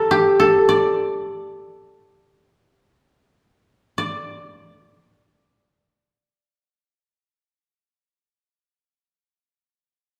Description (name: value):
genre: japanese traditional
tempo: free time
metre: none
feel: none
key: unclear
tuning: A4 = 441 Hz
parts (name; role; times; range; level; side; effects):
- koto; melody; 0.0-8.2 s; G4 to D5; -19 LUFS; equal; none
room: wet recital hall reverb, RT60 1.6 s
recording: recorded in a church or concert hall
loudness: -18 LUFS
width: mono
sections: 0.0-4.0 A section; 4.0-7.4 B section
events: slowing down 0.0-4.0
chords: none